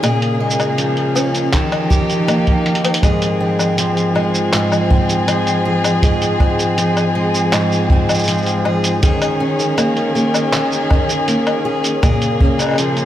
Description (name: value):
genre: folktronica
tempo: 80 BPM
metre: 4/4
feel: straight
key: Ab major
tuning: A4 = 435 Hz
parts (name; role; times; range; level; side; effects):
- dark string quartet; sustained chords; 0.0-13.1 s; Db3 to Ab4; -18 LUFS; left 1 dB; vintage 12-bit sampler grit
- fingerpicked steel-string acoustic guitar; arpeggios; 0.0-13.1 s; Ab2 to Ab4; -18 LUFS; equal; tape echo
- lo-fi sampler-style drum kit; drums; 0.0-13.1 s; handclaps, hi-hat, shaker, woodblock; -22 LUFS; left 1 dB; none
- kick drum; drums; 1.5-12.6 s; none; -16 LUFS; equal; none
room: moderate huge ambient reverb, RT60 8.0 s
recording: dreamy mix soaked in reverb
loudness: -13 LUFS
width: side -12 dB against mid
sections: 0.0-3.0 A section; 3.0-13.1 B section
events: drum fill 2.7-3.0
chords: 0.0 Bbm7; 1.5 Ebadd9; 3.0 Ab6; 9.0 Eb7sus4; 12.0 Bbm7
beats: | 0.03 0.78 1.53 2.28 | 3.03 3.78 4.53 5.28 | 6.03 6.78 7.53 8.28 | 9.03 9.78 10.53 11.28 | 12.03 12.78